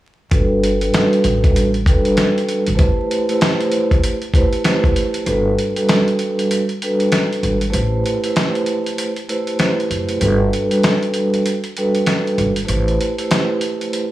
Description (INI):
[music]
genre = hip hop, boom-bap hip-hop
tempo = 97 BPM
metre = 4/4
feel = swing 63% on 16ths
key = G major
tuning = A4 = 441 Hz
[part]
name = vibraphone with soft mallets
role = accompaniment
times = 0.3-14.0 s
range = G3 to C5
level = -17 LUFS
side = right 1 dB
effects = low-pass filter
[part]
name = upright bass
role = bass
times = 0.3-13.0 s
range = F#1 to A1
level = -20 LUFS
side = equal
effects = none
[part]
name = dusty soul sampler-style drum kit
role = drums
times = 0.3-14.1 s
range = hi-hat, kick drum, snare drum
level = -19 LUFS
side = equal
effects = none
[sound]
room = light reverb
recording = vinyl crackle, studio reverb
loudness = -15 LUFS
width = side -15 dB against mid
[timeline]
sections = 0.3-5.3 A section; 5.3-14.1 B section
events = filter sweep on vibraphone 0.3-5.3; break 5.3-14.1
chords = 0.3 Gmaj9; 2.8 Am9; 5.3 Gmaj9; 7.7 Am9; 10.2 Gmaj9; 12.7 Am9